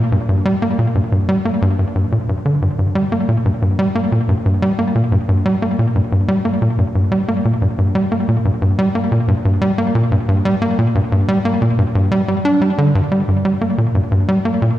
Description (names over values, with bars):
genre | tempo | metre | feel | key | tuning
ambient | 90 BPM | 4/4 | straight | G minor | A4 = 438 Hz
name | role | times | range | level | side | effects
tight sequencer bass | solo | 0.0-14.7 s | G2 to D4 | -14 LUFS | equal | tape echo
room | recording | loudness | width
wet concert hall reverb, RT60 2.4 s | worn, warbling old tape, cassette tape, warbly pitch drift | -14 LUFS | side -13 dB against mid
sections
0.0-13.3 A section; 13.3-14.8 B section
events
none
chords
none